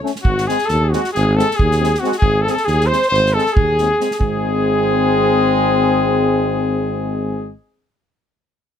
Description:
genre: balkan folk, Balkan brass band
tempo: 273 BPM (eighths)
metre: 9/8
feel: straight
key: unclear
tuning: A4 = 440 Hz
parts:
  - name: clear trombone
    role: accompaniment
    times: 0.0-7.5 s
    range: G#3 to A3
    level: -22 LUFS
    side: right 7 dB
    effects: none
  - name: warm euphonium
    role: accompaniment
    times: 0.0-7.5 s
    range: B#3 to C#4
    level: -20 LUFS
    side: left 9 dB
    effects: none
  - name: unplugged drum kit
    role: percussion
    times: 0.1-4.4 s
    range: kick drum, snare drum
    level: -22 LUFS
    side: right 1 dB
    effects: none
  - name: mellow flugelhorn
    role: melody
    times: 0.2-7.5 s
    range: F#4 to B#4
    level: -20 LUFS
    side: right 1 dB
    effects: none
  - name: warm trumpet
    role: second line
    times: 0.2-7.5 s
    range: F#4 to B#4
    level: -21 LUFS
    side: left 5 dB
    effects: none
  - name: mellow tuba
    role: bass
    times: 0.2-7.5 s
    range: G#1 to D#2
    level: -20 LUFS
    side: right 1 dB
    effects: none
room: light reverb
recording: close, detailed microphones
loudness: -14 LUFS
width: side -8 dB against mid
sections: 0.0-4.2 A section; 4.2-8.1 B section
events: none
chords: 0.2 G#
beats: 0.02 | 0.24 0.46 0.68 0.90 1.12 1.34 1.56 1.78 2.00 | 2.22 2.44 2.66 2.88 3.10 3.32 3.54 3.76 3.98 | 4.20 4.42 4.63 4.86 5.07 5.29 5.51 5.73 5.95 | 6.17 6.39 6.61 6.83 7.05 7.27 7.49

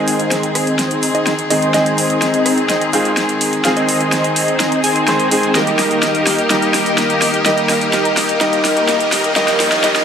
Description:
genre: EDM, festival progressive house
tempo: 126 BPM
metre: 4/4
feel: straight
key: Ab major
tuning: A4 = 440 Hz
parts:
  - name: clear grand piano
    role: accompaniment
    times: 0.0-10.0 s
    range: Eb3 to C5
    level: -20 LUFS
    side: right 1 dB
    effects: tape echo
  - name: rich chamber string section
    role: sustained chords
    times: 0.0-10.0 s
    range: Eb3 to Ab4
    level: -21 LUFS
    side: left 2 dB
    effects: none
  - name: plucky unison lead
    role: arpeggios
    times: 0.0-10.0 s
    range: Eb5 to Ab5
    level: -21 LUFS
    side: equal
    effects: vintage 12-bit sampler grit, tape echo
  - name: supersaw chords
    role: riff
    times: 0.0-10.0 s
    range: Bb3 to Ab5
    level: -18 LUFS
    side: equal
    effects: ensemble chorus, low-pass filter, tape echo
  - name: big-room dance drum kit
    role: drums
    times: 0.1-10.0 s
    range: hi-hat, rim click, snare drum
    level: -19 LUFS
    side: equal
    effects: overdrive, high-pass filter on hats, high-pass filter on snare
  - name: riser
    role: sound effects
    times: 8.5-10.0 s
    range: none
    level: -26 LUFS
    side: left 1 dB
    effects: none
room: moderate lush hall reverb, RT60 2.8 s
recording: high-pass filter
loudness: -12 LUFS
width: side -7 dB against mid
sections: 0.0-10.0 A section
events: build-up 0.0-10.0; drum fill 0.0-10.0; filter sweep on supersaw synth 0.0-10.0; filter sweep on digital synth lead 0.0-10.0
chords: 0.0 Ab; 5.6 Eb; 9.4 Db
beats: 0.32 0.79 1.27 | 1.74 2.22 2.70 3.17 | 3.65 4.12 4.60 5.08 | 5.55 6.03 6.50 6.98 | 7.46 7.93 8.41 8.89 | 9.36 9.84

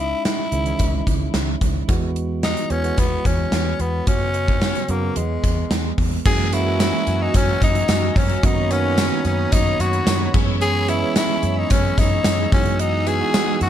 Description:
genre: 1980s-style pop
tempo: 110 BPM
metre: 4/4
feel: straight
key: F# mixolydian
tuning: A4 = 440 Hz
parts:
  - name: raspy tenor saxophone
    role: melody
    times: 0.0-13.7 s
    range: G#3 to G#4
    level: -23 LUFS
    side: left 3 dB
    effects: ping-pong delay
  - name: bell-like tine electric piano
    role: accompaniment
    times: 0.0-13.7 s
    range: C#3 to G#4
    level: -25 LUFS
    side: right 6 dB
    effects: none
  - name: vintage muted picked electric bass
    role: bass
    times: 0.0-13.7 s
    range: C#2 to F#2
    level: -23 LUFS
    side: equal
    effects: none
  - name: gated 80s drum kit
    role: drums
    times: 0.3-13.7 s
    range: crash cymbal, hi-hat, kick drum, snare drum, tambourine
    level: -20 LUFS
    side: equal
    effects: none
  - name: brassy analog pad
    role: sustained chords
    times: 6.3-13.7 s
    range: F#4 to E6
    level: -31 LUFS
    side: right 1 dB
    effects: chorus
  - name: tambourine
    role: percussion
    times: 6.5-13.5 s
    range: none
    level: -38 LUFS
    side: left 12 dB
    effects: none
room: light reverb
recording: dark, warm production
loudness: -17 LUFS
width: side -10 dB against mid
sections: 0.0-6.3 A section; 6.3-13.7 B section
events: none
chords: 0.0 C#madd9; 1.9 Eadd9; 4.1 F#sus4; 5.2 E; 6.3 F#9; 8.4 Bmaj9/F#; 10.3 C#m7/F#; 12.5 Emaj9/F#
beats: 0.25 0.80 1.34 | 1.89 2.44 2.98 3.53 | 4.07 4.62 5.16 5.71 | 6.25 6.80 7.34 7.89 | 8.44 8.98 9.53 10.07 | 10.62 11.16 11.71 12.25 | 12.80 13.34

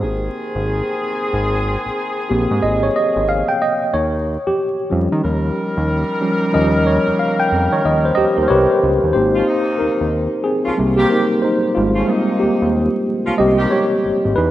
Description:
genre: R&B, neo-soul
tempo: 92 BPM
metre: 4/4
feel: swing 61% on 16ths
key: Ab major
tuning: A4 = 439 Hz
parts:
  - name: tine electric piano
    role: accompaniment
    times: 0.0-14.5 s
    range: F3 to G5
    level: -16 LUFS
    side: equal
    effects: medium stereo tremolo
  - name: clear horn section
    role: stabs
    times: 0.0-13.8 s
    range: C3 to Bb4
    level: -23 LUFS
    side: left 1 dB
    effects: none
  - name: fat analog bass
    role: bass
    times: 0.0-14.5 s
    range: Ab1 to Eb3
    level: -20 LUFS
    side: equal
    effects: none
room: moderate lush hall reverb, RT60 2.5 s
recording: rough home demo mix, vinyl crackle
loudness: -15 LUFS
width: side -14 dB against mid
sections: 0.0-9.1 A section; 9.1-14.5 B section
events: tine electric piano solo 0.0-9.1, 9.1-14.5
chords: 0.0 Abmaj9; 3.9 Eb7; 9.1 Abmaj9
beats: 0.01 0.66 | 1.32 1.97 2.62 3.27 | 3.92 4.58 5.23 5.88 | 6.53 7.19 7.84 8.49 | 9.14 9.79 10.45 11.10 | 11.75 12.40 13.06 13.71 | 14.36

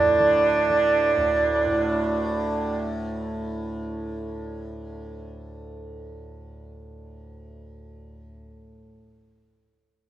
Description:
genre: indian classical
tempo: 104 BPM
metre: 4/4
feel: straight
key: unclear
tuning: A4 = 441 Hz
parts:
  - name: rich sarangi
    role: melody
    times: 0.0-2.8 s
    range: D4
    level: -20 LUFS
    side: right 3 dB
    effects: none
  - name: tanpura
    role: drone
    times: 0.0-8.8 s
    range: D2 to D3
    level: -29 LUFS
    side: equal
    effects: none
room: moderate recital hall reverb, RT60 1.6 s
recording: dark, warm production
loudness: -21 LUFS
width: side -13 dB against mid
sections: 0.0-2.0 A section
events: none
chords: none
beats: 0.27 0.85 1.43

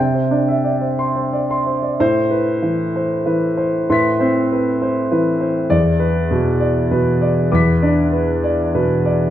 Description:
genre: neoclassical minimalist piano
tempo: 65 BPM (dotted quarters)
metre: 6/8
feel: uneven beats, rubato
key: A minor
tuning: A4 = 440 Hz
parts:
  - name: dark concert grand piano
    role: solo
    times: 0.0-9.3 s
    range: E2 to B6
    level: -15 LUFS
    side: equal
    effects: none
room: wet recital hall reverb, RT60 1.4 s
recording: dark, warm production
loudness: -15 LUFS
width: side -11 dB against mid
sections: 0.0-2.0 A section; 2.0-9.3 B section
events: none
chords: 0.0 Csus2; 2.0 Amadd9; 5.7 E5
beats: 0.99 | 2.01 2.96 | 3.90 4.82 | 5.72 6.64 | 7.55 8.44

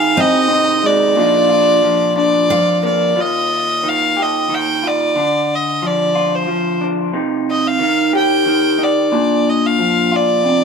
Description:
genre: acoustic folk-pop ballad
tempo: 91 BPM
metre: 3/4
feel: straight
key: Eb major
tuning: A4 = 440 Hz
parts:
  - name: bright violin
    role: melody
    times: 0.0-10.6 s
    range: C5 to G5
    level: -15 LUFS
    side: right 1 dB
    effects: none
  - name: electric guitar through a small old amp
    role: accompaniment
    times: 0.0-10.6 s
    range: Eb2 to Ab4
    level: -16 LUFS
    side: left 1 dB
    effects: phaser
  - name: picked steel-string acoustic guitar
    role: arpeggios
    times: 0.2-3.5 s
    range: Eb4 to F5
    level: -21 LUFS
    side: equal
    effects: none
room: moderate studio reverb, RT60 0.8 s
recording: minimal, uncompressed stereo recording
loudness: -13 LUFS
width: side -5 dB against mid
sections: 0.0-3.2 A section; 3.2-10.6 A section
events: none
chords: 0.0 Ab; 1.2 Bb; 3.2 Ebadd9; 5.2 Dm7; 7.1 Cm; 9.1 Bb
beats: 0.50 | 1.16 1.82 2.49 | 3.17 3.84 4.50 | 5.17 5.83 6.49 | 7.14 7.80 8.47 | 9.13 9.79 10.45

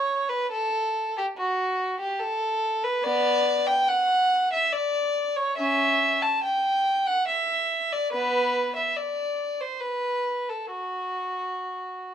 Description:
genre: classical, baroque-style suite movement for unaccompanied violin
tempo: 71 BPM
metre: 3/4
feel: rubato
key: unclear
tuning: A4 = 439 Hz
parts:
  - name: dark violin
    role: solo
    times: 0.0-12.1 s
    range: B3 to A5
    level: -23 LUFS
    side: equal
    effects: none
room: moderate stone room reverb, RT60 1.1 s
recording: none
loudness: -23 LUFS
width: side -9 dB against mid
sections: 0.0-12.1 A section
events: none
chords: none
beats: | 0.50 1.37 2.21 | 3.04 3.89 4.74 | 5.58 6.44 7.29 | 8.13 8.97 9.82 | 10.74 11.70

